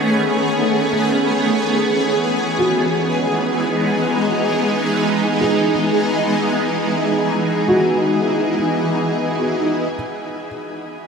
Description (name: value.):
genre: ambient.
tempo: free time.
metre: none.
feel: none.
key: unclear.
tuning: A4 = 440 Hz.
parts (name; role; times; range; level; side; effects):
shimmering ambient pad; sustained chords; 0.0-11.1 s; D#3 to G#4; -17 LUFS; equal; chorus, built-in reverb, phaser.
felt-muted upright piano; arpeggios; 0.0-10.5 s; F#4 to G#4; -24 LUFS; right 1 dB; tape echo.
clear studio violin section; texture; 0.0-10.0 s; G#4 to G#5; -28 LUFS; equal; none.
room: wet shimmer reverb, RT60 7.9 s.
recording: cassette tape.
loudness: -16 LUFS.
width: side -5 dB against mid.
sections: 0.0-9.9 A section; 9.9-11.1 B section.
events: fade-in on felt piano 0.0-9.9; fade-in on violin section 0.0-9.9.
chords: 0.0 Amaj9#11; 0.9 Emaj7; 9.9 A5.